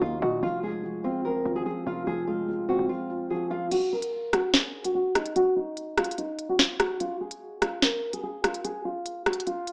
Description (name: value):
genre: hip hop, drill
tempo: 146 BPM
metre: 4/4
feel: half-time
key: F phrygian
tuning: A4 = 441 Hz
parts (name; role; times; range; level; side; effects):
- nylon-string guitar; melody; 0.0-9.7 s; Eb4 to Bb4; -31 LUFS; equal; low-pass filter, digital delay
- felt-muted upright piano; accompaniment; 0.0-3.7 s; Eb3 to F5; -32 LUFS; equal; low-pass filter
- hard-hitting 808-style bass; bass; 0.0-2.9 s; F1 to Bb2; -38 LUFS; equal; none
- drill drum kit; drums; 3.7-9.7 s; crash cymbal, hi-hat, rim click, snare drum; -27 LUFS; equal; none
room: light reverb, digital ambience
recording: rough home demo mix, small speaker sound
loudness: -28 LUFS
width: mono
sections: 0.0-3.7 A section; 3.7-9.7 B section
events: break 2.9-3.7, 8.6-9.7; kick muted 3.7-9.7; filter sweep 3.7-9.7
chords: 0.4 Fm; 3.7 N.C.